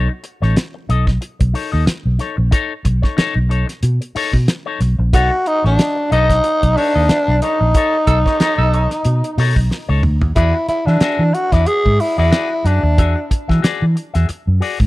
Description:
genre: funk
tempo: 92 BPM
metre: 4/4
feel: swing 56% on 16ths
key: B mixolydian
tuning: A4 = 440 Hz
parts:
  - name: electric guitar with an envelope filter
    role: accompaniment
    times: 0.0-14.8 s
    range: D#4 to E5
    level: -23 LUFS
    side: left 7 dB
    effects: none
  - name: vintage muted fingered electric bass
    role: bass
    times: 0.0-14.9 s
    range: A1 to E3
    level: -15 LUFS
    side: equal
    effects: none
  - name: cloth-damped thuddy drum kit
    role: drums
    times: 0.2-14.9 s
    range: hi-hat, kick drum, snare drum, toms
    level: -17 LUFS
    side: equal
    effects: none
  - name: growling tenor saxophone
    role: melody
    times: 5.1-13.3 s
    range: D4 to G#4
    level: -17 LUFS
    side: equal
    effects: tape echo
  - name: breathy tenor saxophone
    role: second line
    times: 8.1-8.8 s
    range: A4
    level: -23 LUFS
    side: right 6 dB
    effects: none
room: small room ambience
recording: dry, close 1970s-style studio recording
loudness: -13 LUFS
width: side -19 dB against mid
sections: 0.0-10.4 A section; 10.4-14.9 B section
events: band accent 7.7-10.4; drum fill 9.7-10.4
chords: 0.0 B9; 10.4 E9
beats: 0.56 1.22 1.87 | 2.52 3.17 3.83 4.48 | 5.13 5.79 6.44 7.09 | 7.75 8.40 9.05 9.71 | 10.36 11.02 11.67 12.33 | 12.98 13.64 14.29

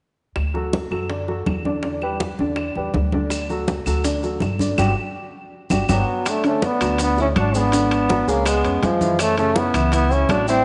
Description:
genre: Afro-Cuban jazz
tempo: 163 BPM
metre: 4/4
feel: straight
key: D major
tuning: A4 = 438 Hz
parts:
  - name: upright bass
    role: bass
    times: 0.4-10.6 s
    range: G1 to F#2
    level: -26 LUFS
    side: equal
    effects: none
  - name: bongos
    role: percussion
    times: 0.4-10.5 s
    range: none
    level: -36 LUFS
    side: equal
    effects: none
  - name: claves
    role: percussion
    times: 0.4-10.5 s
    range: none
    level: -35 LUFS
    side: equal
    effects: none
  - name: congas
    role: percussion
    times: 0.4-10.5 s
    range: none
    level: -29 LUFS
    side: equal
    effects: none
  - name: warm upright piano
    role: accompaniment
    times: 0.5-10.6 s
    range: C#3 to D5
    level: -27 LUFS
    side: equal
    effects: none
  - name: maracas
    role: percussion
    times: 3.3-10.6 s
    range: none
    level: -36 LUFS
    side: equal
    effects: none
  - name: bright trombone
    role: melody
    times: 5.9-10.6 s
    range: E#3 to D4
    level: -22 LUFS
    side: equal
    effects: none
  - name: mellow tenor saxophone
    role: second line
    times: 5.9-10.6 s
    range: G#3 to F#4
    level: -28 LUFS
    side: equal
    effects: none
  - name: timbales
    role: percussion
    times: 6.3-10.5 s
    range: none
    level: -33 LUFS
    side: equal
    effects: none
room: wet echo chamber reverb, RT60 2.3 s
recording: nothing above 10.8 kHz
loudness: -20 LUFS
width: mono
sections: 0.4-6.3 A section; 6.3-10.6 B section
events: band accent 4.8-6.3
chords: 0.4 Dadd9; 1.8 Em7; 3.3 D; 4.8 Gmaj7; 6.3 D6; 7.7 G#m7b5; 8.5 C#7; 9.2 F#m7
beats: | 0.36 0.73 1.10 1.47 | 1.84 2.21 2.58 2.94 | 3.31 3.68 4.05 4.42 | 4.79 5.15 5.52 5.89 | 6.26 6.63 6.99 7.36 | 7.73 8.10 8.46 8.83 | 9.20 9.56 9.93 10.30

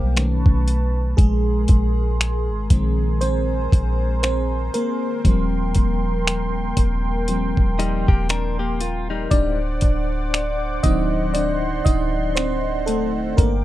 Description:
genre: contemporary R&B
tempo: 59 BPM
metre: 4/4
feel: swing 58% on 16ths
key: unclear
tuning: A4 = 443 Hz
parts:
  - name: FM electric piano with soft pad layer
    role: accompaniment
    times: 0.0-13.5 s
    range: D#3 to Eb5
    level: -24 LUFS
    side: equal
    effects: chorus
  - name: warm analog pad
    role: sustained chords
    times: 0.0-13.6 s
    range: Bb4 to D6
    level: -30 LUFS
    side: equal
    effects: chorus
  - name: clean 808-style bass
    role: bass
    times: 0.0-13.6 s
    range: D1 to Cb2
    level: -22 LUFS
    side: equal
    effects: none
  - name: dusty soul sampler-style drum kit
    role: drums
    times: 0.2-13.6 s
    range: finger snaps, hi-hat, kick drum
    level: -17 LUFS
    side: equal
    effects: none
  - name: direct-recorded clean electric guitar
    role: arpeggios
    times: 7.8-9.6 s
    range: G3 to Bb4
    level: -28 LUFS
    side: left 6 dB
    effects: ping-pong delay
room: little or no reverb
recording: dark, warm production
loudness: -18 LUFS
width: side -14 dB against mid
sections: 0.0-13.6 A section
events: FM electric piano solo 0.0-13.6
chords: 0.2 B9; 1.2 Bb9sus4; 5.2 Eb6; 9.3 D7b9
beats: 0.16 | 1.18 2.20 3.21 4.23 | 5.25 6.26 7.28 8.30 | 9.31 10.33 11.35 12.37 | 13.38

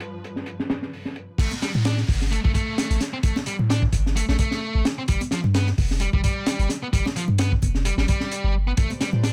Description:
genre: breakbeat, breaks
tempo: 130 BPM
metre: 4/4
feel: swing 55% on 16ths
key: A minor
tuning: A4 = 441 Hz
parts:
  - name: dark chamber string section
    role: sustained chords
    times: 0.0-1.4, 8.8-9.3 s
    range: G2 to D5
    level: -41 LUFS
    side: equal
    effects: vintage 12-bit sampler grit, sidechain pumping
  - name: crunchy breakbeat drum kit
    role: drums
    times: 0.0-9.3 s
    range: crash cymbal, hi-hat, kick drum, snare drum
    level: -26 LUFS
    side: equal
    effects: low-pass filter on kick, low-pass filter on hats, low-pass filter on cymbals, low-pass filter on snare, low-pass filter on room
  - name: sludgy distorted guitar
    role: riff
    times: 1.4-9.3 s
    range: F3 to D4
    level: -31 LUFS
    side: equal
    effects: overdrive, vintage 12-bit sampler grit, tape echo
  - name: warm 808-style bass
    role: bass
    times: 1.4-9.3 s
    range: F1 to A2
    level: -24 LUFS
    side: equal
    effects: none
  - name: downlifter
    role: sound effects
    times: 1.4-5.1 s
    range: none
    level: -42 LUFS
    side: equal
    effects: none
  - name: congas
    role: percussion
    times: 1.5-9.2 s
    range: none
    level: -35 LUFS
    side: equal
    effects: none
room: little or no reverb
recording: none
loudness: -23 LUFS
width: mono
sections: 0.0-1.4 A section; 1.4-9.3 B section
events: drop 1.4-9.3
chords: 0.0 G7; 1.4 A7(no3); 5.1 G7(no3); 8.8 Am11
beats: 0.00 0.47 0.93 | 1.39 1.85 2.31 2.77 | 3.23 3.70 4.16 4.62 | 5.08 5.54 6.00 6.47 | 6.93 7.39 7.85 8.31 | 8.77 9.23

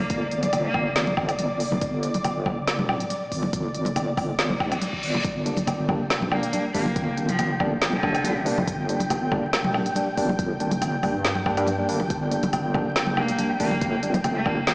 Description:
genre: deep dubstep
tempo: 140 BPM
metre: 4/4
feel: half-time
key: G minor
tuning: A4 = 440 Hz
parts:
  - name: clear cello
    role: melody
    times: 0.0-1.0, 6.3-8.5, 13.2-14.7 s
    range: D3 to Bb3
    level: -29 LUFS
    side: equal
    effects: dub echo
  - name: deep soft wobble bass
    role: bass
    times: 0.0-14.7 s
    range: G1 to G2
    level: -28 LUFS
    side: equal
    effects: chorus
  - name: congas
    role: percussion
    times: 0.0-14.3 s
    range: none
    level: -30 LUFS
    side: equal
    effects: dub echo
  - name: flickering grainy texture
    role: texture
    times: 0.0-14.7 s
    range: D5 to G5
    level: -30 LUFS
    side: equal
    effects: built-in reverb
  - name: deep house drum kit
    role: drums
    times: 0.1-14.7 s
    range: hi-hat, snare drum, woodblock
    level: -27 LUFS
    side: equal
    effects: small room ambience
  - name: electronic kick drum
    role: drums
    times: 0.1-14.6 s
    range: none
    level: -31 LUFS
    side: equal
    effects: small room ambience
  - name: reverse cymbal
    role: sound effects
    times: 4.5-5.2 s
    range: none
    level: -33 LUFS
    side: left 1 dB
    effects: none
  - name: tine electric piano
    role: stabs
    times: 5.5-14.6 s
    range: G3 to D4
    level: -27 LUFS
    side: equal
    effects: slow stereo tremolo, dub echo
room: moderate huge ambient reverb, RT60 4.8 s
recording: played on a big sound system in a bare room, large studio reverb, vinyl crackle, small speaker sound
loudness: -22 LUFS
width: side -27 dB against mid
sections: 0.0-14.7 A section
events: reverse cymbal 4.5-5.2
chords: 0.0 Gm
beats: | 0.10 0.53 0.96 1.39 | 1.82 2.25 2.67 3.10 | 3.53 3.96 4.39 4.82 | 5.25 5.67 6.10 6.53 | 6.96 7.39 7.82 8.24 | 8.67 9.10 9.53 9.96 | 10.39 10.82 11.24 11.67 | 12.10 12.53 12.96 13.39 | 13.82 14.24 14.67

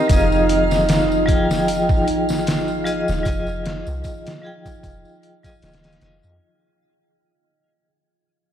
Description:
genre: trip hop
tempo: 76 BPM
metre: 4/4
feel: swing 55% on 16ths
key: unclear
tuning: A4 = 441 Hz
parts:
  - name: vibraphone with hard mallets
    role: accompaniment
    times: 0.0-6.4 s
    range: F3 to G5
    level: -21 LUFS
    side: left 1 dB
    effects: tremolo, tape echo
  - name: deep dark ambient pad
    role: sustained chords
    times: 0.0-6.4 s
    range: Eb4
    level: -24 LUFS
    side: right 3 dB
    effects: chorus, built-in reverb, vintage 12-bit sampler grit
  - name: backwards swelling texture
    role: texture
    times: 0.0-6.4 s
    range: F4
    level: -32 LUFS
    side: right 2 dB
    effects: built-in reverb, analog chorus
  - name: soft 808-style bass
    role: bass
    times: 0.1-6.4 s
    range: Eb1 to F2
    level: -26 LUFS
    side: equal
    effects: none
  - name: trip hop sampler-style drum kit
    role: drums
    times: 0.1-6.2 s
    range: hi-hat, kick drum, snare drum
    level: -22 LUFS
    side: equal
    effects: none
  - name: tambourine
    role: percussion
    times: 0.1-6.4 s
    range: none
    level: -39 LUFS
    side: left 3 dB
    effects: none
room: wet cathedral reverb, RT60 7.3 s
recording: dreamy mix soaked in reverb, vinyl crackle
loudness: -17 LUFS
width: side -10 dB against mid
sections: 0.0-6.4 A section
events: fade-out 0.0-6.4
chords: 0.1 Fm7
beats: | 0.10 0.89 1.68 2.46 | 3.25 4.04 4.83 5.62

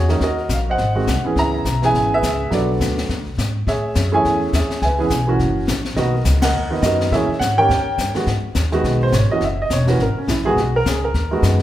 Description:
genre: jazz piano trio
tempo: 209 BPM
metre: 4/4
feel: swing 59% on 8ths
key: G# minor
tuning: A4 = 442 Hz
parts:
  - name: clear upright piano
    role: melody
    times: 0.0-11.6 s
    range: D#3 to A#5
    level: -18 LUFS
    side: right 1 dB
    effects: none
  - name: upright bass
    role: bass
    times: 0.0-11.6 s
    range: E1 to A#2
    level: -20 LUFS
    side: equal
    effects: none
  - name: jazz brush drum kit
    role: drums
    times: 0.1-11.6 s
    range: brushed snare drum, hi-hat, kick drum, ride cymbal, snare drum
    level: -25 LUFS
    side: left 2 dB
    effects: none
room: moderate recital hall reverb, RT60 1.3 s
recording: recorded in a church or concert hall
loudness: -16 LUFS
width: side -13 dB against mid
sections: 0.0-8.3 A section; 8.3-11.6 B section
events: band accent 6.4; upright piano solo 8.3-11.6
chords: 0.2 D#m; 0.8 G#7; 1.4 C#m7; 2.5 Bm7; 3.1 E7; 3.7 Amaj7; 4.8 C#m7; 5.4 F#7; 6.0 Bmaj7; 7.1 A#m7b5; 7.7 D#7; 8.3 G#m7; 9.4 F#7; 10.6 B6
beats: | 0.21 0.50 0.79 1.07 | 1.36 1.65 1.94 2.23 | 2.51 2.80 3.09 3.38 | 3.67 3.95 4.24 4.53 | 4.82 5.10 5.39 5.68 | 5.97 6.25 6.54 6.83 | 7.12 7.40 7.69 7.98 | 8.27 8.55 8.84 9.13 | 9.42 9.70 9.99 10.28 | 10.57 10.85 11.14 11.43

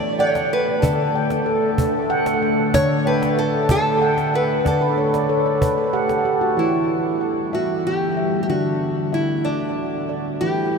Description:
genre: world meditative, meditative tuned percussion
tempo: 63 BPM (dotted quarters)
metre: 6/8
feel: straight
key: unclear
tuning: A4 = 440 Hz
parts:
  - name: nylon-string guitar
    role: melody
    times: 0.0-10.8 s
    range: D4 to D5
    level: -23 LUFS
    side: equal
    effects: shimmer reverb, diffuse ambient delay
  - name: deep dark ambient pad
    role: sustained chords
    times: 0.0-10.8 s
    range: D3 to A4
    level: -24 LUFS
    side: equal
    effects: chorus, built-in reverb, shimmer reverb
  - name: handpan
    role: arpeggios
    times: 0.0-10.8 s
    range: D3 to G5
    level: -21 LUFS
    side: equal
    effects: shimmer reverb, diffuse ambient delay
  - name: cajon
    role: percussion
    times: 0.4-6.5 s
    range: none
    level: -26 LUFS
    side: right 1 dB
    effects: none
room: wet huge ambient reverb, RT60 8.2 s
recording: dreamy mix soaked in reverb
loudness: -17 LUFS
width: side -5 dB against mid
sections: 0.0-6.6 A section; 6.6-10.8 B section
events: handpan fill 4.7-6.6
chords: 0.0 D; 6.6 Em; 8.5 D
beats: | 0.83 1.79 | 2.75 3.70 | 4.66 5.62 | 6.58 7.54 | 8.49 9.46 | 10.42

